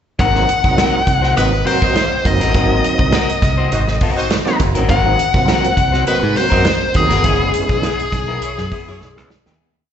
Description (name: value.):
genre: funk.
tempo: 102 BPM.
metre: 4/4.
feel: straight.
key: Ab mixolydian.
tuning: A4 = 441 Hz.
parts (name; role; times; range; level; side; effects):
nasal lead guitar with a parked wah; melody; 0.2-9.3 s; Ab4 to Gb5; -18 LUFS; left 3 dB; overdrive, plate reverb, slapback echo.
electric guitar at the edge of break-up; accompaniment; 0.2-9.7 s; Cb4 to C5; -23 LUFS; left 7 dB; plate reverb, slapback echo.
overdriven tonewheel organ; stabs; 0.2-9.5 s; F3 to Gb4; -21 LUFS; right 5 dB; chorus vibrato, fast rotary speaker, tube saturation, plate reverb, slapback echo.
modern bright fingered electric bass; bass; 0.2-9.6 s; Gb1 to Ab2; -18 LUFS; right 1 dB; none.
warm soul drum kit; drums; 0.2-9.6 s; hi-hat, kick drum, snare drum; -19 LUFS; right 1 dB; none.
warm horn section; second line; 1.4-9.2 s; Eb4 to Eb5; -24 LUFS; left 1 dB; plate reverb, slapback echo.
room: light reverb.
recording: live gig heard through the venue's PA, recital hall reverb, nothing above 8.0 kHz.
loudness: -13 LUFS.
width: side -9 dB against mid.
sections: 0.2-9.6 A section.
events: fade-out 7.2-9.6; drum fill 9.0-9.6.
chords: 0.2 Ab9; 7.2 Gb9sus4.